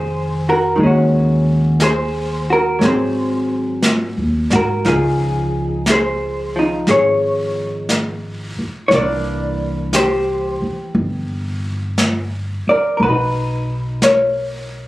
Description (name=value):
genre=jazz ballad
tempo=59 BPM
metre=4/4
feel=swing 68% on 8ths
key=unclear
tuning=A4 = 440 Hz
part: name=vintage hollow-body jazz guitar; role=accompaniment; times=0.0-14.9 s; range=Eb3 to D5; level=-16 LUFS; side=equal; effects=none
part: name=upright bass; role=bass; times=0.0-14.9 s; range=F1 to Ab2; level=-22 LUFS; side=equal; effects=none
part: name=jazz brush drum kit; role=drums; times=0.8-14.9 s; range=brushed snare drum, hi-hat, snare drum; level=-22 LUFS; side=equal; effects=none
room=moderate studio reverb, RT60 0.6 s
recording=recorded on a phone in the room, club reverb, compression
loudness=-15 LUFS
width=side -17 dB against mid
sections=0.0-14.9 A section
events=none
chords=0.0 Bb9sus4; 0.8 Ebm7; 2.8 Ab7; 4.9 Dbmaj9; 8.9 C9; 13.0 Bmaj9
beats=| 0.78 1.80 2.82 3.84 | 4.85 5.87 6.88 7.89 | 8.91 9.93 10.95 11.97 | 13.00 14.02